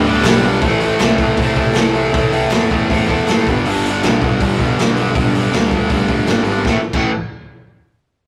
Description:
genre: garage rock duo or trio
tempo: 159 BPM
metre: 4/4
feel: straight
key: A minor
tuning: A4 = 440 Hz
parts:
  - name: combo organ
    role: sustained chords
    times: 0.0-3.6 s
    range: D4 to D5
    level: -29 LUFS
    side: equal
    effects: none
  - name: fuzz guitar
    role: riff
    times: 0.0-7.1 s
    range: G2 to A3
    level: -18 LUFS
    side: equal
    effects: distortion
  - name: fuzz picked electric bass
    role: bass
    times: 0.0-7.1 s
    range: G1 to G2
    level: -24 LUFS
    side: equal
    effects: overdrive
  - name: crunchy breakbeat drum kit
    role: drums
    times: 0.2-7.0 s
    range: crash cymbal, hi-hat, kick drum, snare drum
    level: -20 LUFS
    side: equal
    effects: none
  - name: group handclap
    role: percussion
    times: 0.2-3.4 s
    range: none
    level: -34 LUFS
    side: equal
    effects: none
room: light reverb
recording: rough rehearsal-room recording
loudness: -15 LUFS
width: mono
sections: 0.6-6.7 A section; 6.7-8.2 B section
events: none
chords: 0.0 G; 0.6 Am; 3.4 G; 6.7 A5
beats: 0.23 | 0.61 0.99 1.37 1.75 | 2.12 2.50 2.88 3.26 | 3.64 4.01 4.39 4.77 | 5.15 5.53 5.90 6.28 | 6.66 7.03

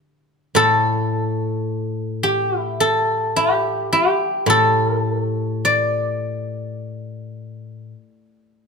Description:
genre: chinese traditional, Chinese solo plucked strings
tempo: 53 BPM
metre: 4/4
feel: rubato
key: unclear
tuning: A4 = 441 Hz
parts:
  - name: guzheng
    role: solo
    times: 0.5-8.5 s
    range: A2 to D5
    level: -18 LUFS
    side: left 1 dB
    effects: none
room: light reverb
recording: close, detailed microphones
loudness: -17 LUFS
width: side -5 dB against mid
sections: 0.0-8.7 A section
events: none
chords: none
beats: | 0.02 1.12 2.23 3.36 | 4.49 5.63 6.77 7.93

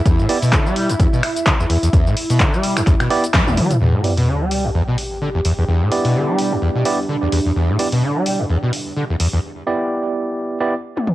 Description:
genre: acid house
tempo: 128 BPM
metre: 4/4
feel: swing 56% on 16ths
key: E minor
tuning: A4 = 440 Hz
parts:
  - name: lush unison pad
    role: sustained chords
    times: 0.0-9.4 s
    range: E4 to G4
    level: -27 LUFS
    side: equal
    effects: chorus, sidechain pumping
  - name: overdriven acid bass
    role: riff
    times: 0.1-9.4 s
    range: E1 to G3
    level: -18 LUFS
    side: equal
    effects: distortion, tube saturation, ensemble chorus, analog delay
  - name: electronic kick drum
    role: drums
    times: 0.1-3.4 s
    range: none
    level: -16 LUFS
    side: equal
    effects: overdrive, cassette tape
  - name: punchy analog drum machine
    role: drums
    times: 0.1-11.1 s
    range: finger snaps, handclaps, hi-hat, shaker, snare drum, toms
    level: -22 LUFS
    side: equal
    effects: overdrive, cassette tape
  - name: overdriven tine electric piano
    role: stabs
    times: 0.3-10.7 s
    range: B3 to D5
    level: -21 LUFS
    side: right 2 dB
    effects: auto-pan, low-pass filter, analog delay
  - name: sub drop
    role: sound effects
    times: 3.8-5.7 s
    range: none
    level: -23 LUFS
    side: equal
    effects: none
  - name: deep dark ambient pad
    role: texture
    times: 5.5-9.4 s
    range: D4 to B5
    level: -27 LUFS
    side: right 4 dB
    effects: chorus, built-in reverb, sidechain pumping
room: light reverb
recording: home recording on cassette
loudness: -15 LUFS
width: side -16 dB against mid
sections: 0.0-3.8 A section; 3.8-11.1 B section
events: drop 0.0-3.8; drum fill 3.3-3.8, 11.0; band accent 3.3; impact 3.8-5.7; filter sweep on tine electric piano 3.8-11.1; break 9.4-11.1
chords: 0.0 Em7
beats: | 0.06 0.53 0.99 1.46 | 1.93 2.40 2.87 3.34 | 3.81 4.28 4.75 5.21 | 5.68 6.15 6.62 7.09 | 7.56 8.03 8.49 8.96 | 9.43 9.90 10.37 10.84

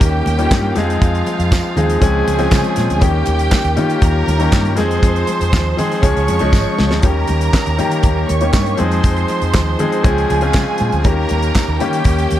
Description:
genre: disco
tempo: 120 BPM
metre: 4/4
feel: straight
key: unclear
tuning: A4 = 440 Hz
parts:
  - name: clear symphonic string section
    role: second line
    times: 0.0-12.4 s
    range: F4 to Db6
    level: -22 LUFS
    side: right 4 dB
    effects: none
  - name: warm concert grand piano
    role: accompaniment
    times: 0.0-12.4 s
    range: Eb3 to Ab4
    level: -18 LUFS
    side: left 3 dB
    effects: none
  - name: tonewheel organ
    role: sustained chords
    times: 0.0-12.4 s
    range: Db3 to C5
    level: -25 LUFS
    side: right 5 dB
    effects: overdrive, fast rotary speaker
  - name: vintage muted fingered electric bass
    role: bass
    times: 0.0-12.4 s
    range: Ab1 to Eb3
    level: -18 LUFS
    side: equal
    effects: none
  - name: damped 70s drum kit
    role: drums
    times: 0.0-12.4 s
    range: handclaps, hi-hat, kick drum, snare drum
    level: -16 LUFS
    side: equal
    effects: none
  - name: congas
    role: percussion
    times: 0.3-12.4 s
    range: none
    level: -26 LUFS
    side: equal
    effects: none
  - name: tambourine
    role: percussion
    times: 0.5-11.7 s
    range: none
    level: -32 LUFS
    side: right 14 dB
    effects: none
room: little or no reverb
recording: none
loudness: -13 LUFS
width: side -12 dB against mid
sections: 0.0-12.4 A section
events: drum fill 6.5-7.0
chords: 0.0 Eb7; 0.8 Fm7; 2.0 Dbmaj7; 3.0 Eb7; 4.8 Fm7; 6.0 Db; 7.0 Eb7; 8.8 Fm7; 10.0 Dbmaj7; 11.0 Eb7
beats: 0.01 0.51 | 1.02 1.52 2.02 2.52 | 3.02 3.53 4.03 4.53 | 5.03 5.53 6.03 6.54 | 7.04 7.54 8.04 8.54 | 9.04 9.54 10.05 10.55 | 11.05 11.55 12.05

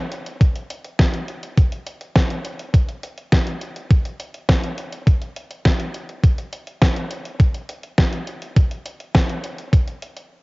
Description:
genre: pop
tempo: 103 BPM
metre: 4/4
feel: straight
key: none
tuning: none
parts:
  - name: detuned 8-bit digital drum machine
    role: drums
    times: 0.1-10.3 s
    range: hi-hat, kick drum, snare drum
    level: -17 LUFS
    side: equal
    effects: none
room: light reverb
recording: home recording on cassette, nothing above 7.6 kHz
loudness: -18 LUFS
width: side -26 dB against mid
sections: 0.0-10.4 A section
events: none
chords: none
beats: 0.41 0.99 | 1.57 2.16 2.74 3.32 | 3.90 4.49 5.07 5.65 | 6.24 6.82 7.40 7.98 | 8.56 9.15 9.73

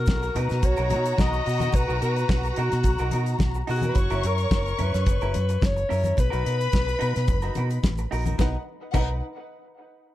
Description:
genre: disco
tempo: 108 BPM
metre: 4/4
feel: straight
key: B major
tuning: A4 = 441 Hz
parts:
  - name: breathy alto saxophone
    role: melody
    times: 0.0-7.8 s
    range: F#4 to D#5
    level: -29 LUFS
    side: left 3 dB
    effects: analog delay
  - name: dark studio string section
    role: second line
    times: 0.0-9.2 s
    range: D#4 to C#6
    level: -31 LUFS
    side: equal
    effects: analog delay
  - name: deep dub fingered electric bass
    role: bass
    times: 0.0-9.2 s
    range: F#1 to B2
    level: -26 LUFS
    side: equal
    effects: none
  - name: damped 70s drum kit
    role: drums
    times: 0.1-9.1 s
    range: crash cymbal, hi-hat, kick drum, snare drum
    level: -25 LUFS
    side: equal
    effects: none
  - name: congas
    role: percussion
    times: 0.1-9.2 s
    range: none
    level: -34 LUFS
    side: left 4 dB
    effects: none
  - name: egg shaker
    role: percussion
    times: 0.1-9.2 s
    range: none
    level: -50 LUFS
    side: right 8 dB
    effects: none
  - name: clean electric guitar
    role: accompaniment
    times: 0.2-9.1 s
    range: B3 to A#4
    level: -34 LUFS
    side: right 3 dB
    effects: none
room: small room ambience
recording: dark, warm production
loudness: -22 LUFS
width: side -14 dB against mid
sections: 0.0-8.4 A section; 8.4-10.1 B section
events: none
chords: 0.0 Bmaj7; 4.0 F#7; 6.2 Bmaj7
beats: 0.08 0.63 1.19 | 1.74 2.29 2.85 3.40 | 3.96 4.51 5.07 5.62 | 6.17 6.73 7.28 7.83 | 8.39 8.94

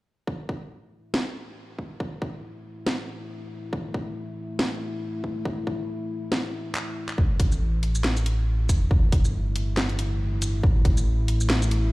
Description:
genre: deep dubstep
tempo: 139 BPM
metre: 4/4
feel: swing 57% on 16ths, half-time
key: unclear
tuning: A4 = 440 Hz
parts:
  - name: dark analog pad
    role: sustained chords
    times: 0.3-11.9 s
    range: A3 to E4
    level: -34 LUFS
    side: left 1 dB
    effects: lush chorus
  - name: electronic kick drum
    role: drums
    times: 0.3-10.9 s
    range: none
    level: -23 LUFS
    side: equal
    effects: high-pass filter on kick
  - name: garage drum kit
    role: drums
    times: 1.1-11.8 s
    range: handclaps, hi-hat, shaker, snare drum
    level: -30 LUFS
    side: equal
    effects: none
  - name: dark detuned saw bass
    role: bass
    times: 7.2-11.9 s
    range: E1 to A1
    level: -24 LUFS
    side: equal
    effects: none
room: digital ambience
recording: played on a big sound system in a bare room, large studio reverb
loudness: -23 LUFS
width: side -21 dB against mid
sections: 0.3-7.2 A section; 7.2-11.9 B section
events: drum fill 6.8-7.2; build-up 7.2-11.9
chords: 0.3 A5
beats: | 0.28 0.71 1.14 1.57 | 2.00 2.43 2.87 3.30 | 3.73 4.16 4.59 5.02 | 5.46 5.89 6.32 6.75 | 7.18 7.61 8.04 8.48 | 8.91 9.34 9.77 10.20 | 10.63 11.07 11.50

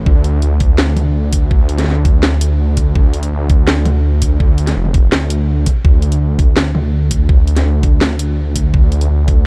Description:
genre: half-time drum and bass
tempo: 166 BPM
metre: 4/4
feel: half-time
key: D minor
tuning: A4 = 439 Hz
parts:
  - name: dark detuned saw bass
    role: bass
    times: 0.0-9.5 s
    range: F1 to D2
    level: -16 LUFS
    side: equal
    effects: none
  - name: electronic kick drum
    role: drums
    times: 0.1-9.4 s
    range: none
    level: -14 LUFS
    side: equal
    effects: none
  - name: drum and bass drum kit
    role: drums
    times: 0.2-9.4 s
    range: hi-hat, snare drum, toms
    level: -21 LUFS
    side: equal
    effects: none
room: little or no reverb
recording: dark, warm production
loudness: -13 LUFS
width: mono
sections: 0.0-9.5 A section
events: none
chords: none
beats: | 0.06 0.42 0.79 1.15 | 1.51 1.87 2.23 2.59 | 2.95 3.31 3.68 4.04 | 4.40 4.76 5.12 5.48 | 5.85 6.21 6.57 6.93 | 7.29 7.65 8.01 8.38 | 8.74 9.10 9.46

